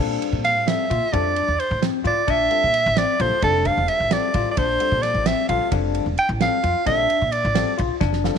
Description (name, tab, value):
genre	progressive instrumental, band music in an uneven meter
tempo	262 BPM (eighths)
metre	5/8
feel	straight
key	unclear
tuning	A4 = 441 Hz
part	dark baby grand piano	accompaniment	0.0-8.4 s	G3 to A4	-30 LUFS	left 14 dB	none
part	bell-like tine electric piano	arpeggios	0.0-8.3 s	C4 to F4	-26 LUFS	left 11 dB	medium stereo tremolo
part	upright bass	bass	0.0-8.3 s	E1 to Bb2	-25 LUFS	equal	none
part	warm soul drum kit	drums	0.2-8.4 s	kick drum, ride cymbal, snare drum	-28 LUFS	right 6 dB	none
part	clear soprano saxophone	melody	0.4-7.8 s	A4 to G5	-20 LUFS	right 2 dB	none
room	light reverb, small room ambience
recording	1960s-style stereo with parts hard left and right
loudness	-18 LUFS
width	side -7 dB against mid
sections	0.0-8.4 A section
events	soprano saxophone solo 0.0-8.4; drum fill 8.0-8.4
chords	0.0 Bbmaj9; 1.1 F; 2.3 Bbmaj9; 3.4 Fmaj7; 4.6 Bbmaj9; 5.7 F; 6.9 Bbmaj9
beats	0.22 0.45 0.68 0.91 | 1.14 1.36 1.59 1.82 2.05 | 2.28 2.51 2.74 2.97 3.20 | 3.43 3.66 3.89 4.12 4.35 | 4.58 4.81 5.04 5.26 5.49 | 5.72 5.95 6.18 6.41 6.64 | 6.87 7.10 7.33 7.55 7.78 | 8.01 8.24